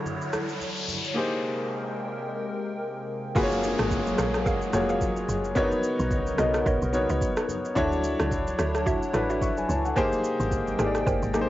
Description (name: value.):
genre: amapiano.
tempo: 109 BPM.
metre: 4/4.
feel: swing 58% on 16ths.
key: unclear.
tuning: A4 = 441 Hz.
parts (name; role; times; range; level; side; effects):
warm concert grand piano; accompaniment; 0.0-11.5 s; A#3 to C#6; -27 LUFS; left 2 dB; cassette tape.
hollow soft pad; sustained chords; 0.0-11.5 s; B#2 to G5; -34 LUFS; equal; chorus, sidechain pumping, cassette tape.
noise sweep and downlifter; sound effects; 0.0-7.8 s; none; -35 LUFS; equal; none.
deep house drum kit; drums; 0.1-11.5 s; kick drum, rim click, shaker; -30 LUFS; equal; overdrive, cassette tape.
congas; percussion; 0.1-11.5 s; none; -39 LUFS; right 2 dB; none.
mallet-like synth pluck; stabs; 3.4-11.2 s; F#4 to G5; -33 LUFS; right 3 dB; chorus, cassette tape, tape echo.
woody log drum bass; bass; 3.4-11.5 s; E#1 to D2; -30 LUFS; equal; none.
room: light reverb.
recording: home recording on cassette, nothing above 7.6 kHz.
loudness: -24 LUFS.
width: side -14 dB against mid.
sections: 0.0-3.4 A section; 3.4-11.5 B section.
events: noise sweep 0.0-3.4.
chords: 0.0 Dmaj9; 1.2 G#maj9; 3.4 F#maj9; 5.6 Bmaj9; 7.8 Dmaj9; 10.0 G#maj9.